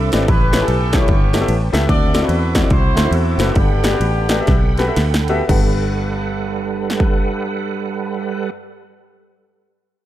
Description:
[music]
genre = uptempo gospel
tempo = 112-149 BPM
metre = 4/4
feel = swing 62% on 8ths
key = G major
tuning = A4 = 445 Hz
[part]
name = warm horn section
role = melody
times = 0.0-4.9 s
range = B3 to D5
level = -23 LUFS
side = left 1 dB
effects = tape echo
[part]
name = bright tonewheel organ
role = sustained chords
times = 0.0-8.5 s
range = G3 to D6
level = -24 LUFS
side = right 5 dB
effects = chorus vibrato, slow rotary speaker
[part]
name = fingered electric bass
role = bass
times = 0.0-8.5 s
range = F#1 to E2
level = -18 LUFS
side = equal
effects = none
[part]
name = clear baby grand piano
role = accompaniment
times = 0.1-8.5 s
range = G2 to F#5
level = -22 LUFS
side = left 3 dB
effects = none
[part]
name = big-room dance drum kit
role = drums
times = 0.1-7.1 s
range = crash cymbal, kick drum, ride cymbal, snare drum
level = -17 LUFS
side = equal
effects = none
[sound]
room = little or no reverb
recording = dark, warm production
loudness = -14 LUFS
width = side -13 dB against mid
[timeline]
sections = 0.0-5.5 A section; 5.5-9.8 B section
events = slowing down 1.9-5.5; drum fill 4.5-5.5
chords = 0.3 A9; 1.9 D9; 3.6 Gmaj9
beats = | 0.28 0.69 1.09 1.49 | 1.90 2.30 2.71 3.13 | 3.56 4.01 4.48 4.97 | 5.49 6.03 6.56 7.10 | 7.64 8.18

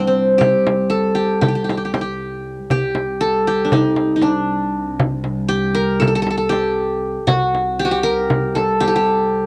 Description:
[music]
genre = Turkish makam ensemble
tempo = 236 BPM (eighths)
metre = 9/8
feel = straight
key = C makam nikriz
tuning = A4 = 440 Hz
[part]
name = qanun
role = melody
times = 0.0-9.5 s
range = C4 to Bb4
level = -20 LUFS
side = equal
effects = cassette tape, plate reverb
[part]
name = dark studio cello section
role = drone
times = 0.0-9.5 s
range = C2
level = -26 LUFS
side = equal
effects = cassette tape
[part]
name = frame drum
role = percussion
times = 0.4-8.9 s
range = none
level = -23 LUFS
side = equal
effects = none
[sound]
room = wet booth ambience, RT60 0.2 s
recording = home recording on cassette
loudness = -18 LUFS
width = mono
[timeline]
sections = 0.0-9.5 A section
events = none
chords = none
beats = 0.16 | 0.41 0.67 0.92 1.18 1.43 1.68 1.94 2.19 2.45 | 2.70 2.96 3.21 3.47 3.72 3.98 4.23 4.49 4.74 | 5.00 5.25 5.50 5.76 6.01 6.27 6.52 6.78 7.03 | 7.29 7.54 7.80 8.05 8.31 8.56 8.82 9.07 9.32

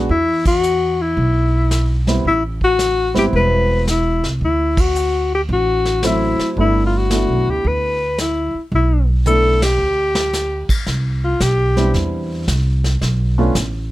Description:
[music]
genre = jazz, small-group swing and bop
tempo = 111 BPM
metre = 4/4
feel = swing 67% on 8ths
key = G major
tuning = A4 = 440 Hz
[part]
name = dark grand piano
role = accompaniment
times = 0.0-13.5 s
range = F#3 to F4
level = -20 LUFS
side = right 2 dB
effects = none
[part]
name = upright bass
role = bass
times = 0.0-13.9 s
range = E1 to E2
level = -18 LUFS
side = equal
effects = none
[part]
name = mellow alto saxophone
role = melody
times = 0.1-11.9 s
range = E4 to B4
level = -17 LUFS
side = left 2 dB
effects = none
[part]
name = vintage brush drum kit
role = drums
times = 0.1-13.9 s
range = brushed snare drum, crash cymbal, hi-hat, kick drum, ride cymbal, snare drum, toms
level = -23 LUFS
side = equal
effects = none
[sound]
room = little or no reverb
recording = close, detailed microphones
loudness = -15 LUFS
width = side -16 dB against mid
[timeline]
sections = 0.0-10.9 A section; 10.9-13.9 B section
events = band accent 0.4, 4.7, 9.5; drum fill 9.3-10.3; alto saxophone solo 10.9-13.9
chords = 0.1 E5; 2.3 Am9; 4.4 D9; 6.6 G69; 10.9 Cmaj7; 13.0 Bm7b5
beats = | 0.10 0.64 1.18 1.71 | 2.25 2.79 3.33 3.87 | 4.41 4.95 5.49 6.03 | 6.56 7.10 7.64 8.18 | 8.72 9.26 9.79 10.33 | 10.87 11.40 11.94 12.48 | 13.02 13.55

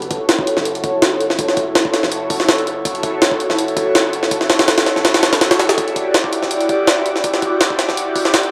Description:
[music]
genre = drum and bass, jungle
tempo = 164 BPM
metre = 4/4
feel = swing 53% on 16ths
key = F# phrygian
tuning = A4 = 439 Hz
[part]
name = long sustained 808-style bass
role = bass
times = 0.0-8.5 s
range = E1 to F#1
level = -42 LUFS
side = equal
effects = high-pass filter
[part]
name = jungle sampler-style drum kit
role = drums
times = 0.0-8.5 s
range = hi-hat, kick drum, snare drum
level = -18 LUFS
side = equal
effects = high-pass filter on kick, high-pass filter on snare, high-pass filter on hats, high-pass filter on room
[sound]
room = moderate plate reverb, RT60 1.3 s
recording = dry, gritty hardware recording, vinyl crackle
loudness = -16 LUFS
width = mono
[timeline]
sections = 0.0-8.5 A section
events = build-up 0.0-8.5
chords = none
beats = 0.29 0.66 1.02 | 1.39 1.75 2.12 2.48 | 2.85 3.22 3.58 3.95 | 4.32 4.68 5.05 5.41 | 5.78 6.14 6.51 6.88 | 7.24 7.61 7.97 8.34

